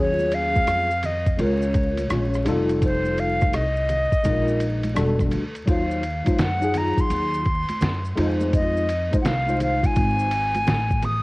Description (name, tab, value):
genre	hip hop, jazz-hop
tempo	84 BPM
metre	4/4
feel	swing 66% on 16ths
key	Eb dorian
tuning	A4 = 439 Hz
part	breathy silver concert flute	melody	0.0-11.2 s	C5 to Eb6	-24 LUFS	equal	cassette tape
part	mellow tine electric piano	accompaniment	0.0-10.3 s	Gb3 to Db5	-25 LUFS	left 1 dB	overdrive, ensemble chorus, cassette tape
part	upright bass	bass	0.0-11.2 s	E1 to Gb2	-26 LUFS	equal	none
part	congas and maracas	percussion	0.2-11.2 s	none	-35 LUFS	right 2 dB	none
part	lo-fi sampler-style drum kit	drums	0.3-11.2 s	hi-hat, kick drum, ride cymbal, rim click, snare drum	-26 LUFS	equal	cassette tape
room	light reverb, studio ambience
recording	home recording on cassette, vinyl crackle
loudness	-19 LUFS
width	side -22 dB against mid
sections	0.0-5.7 A section; 5.7-11.2 B section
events	none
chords	0.0 Ebm11; 1.4 Db6; 2.5 F9; 4.2 Bb7sus4; 5.0 Em11; 5.7 Ebm69; 8.2 Fm7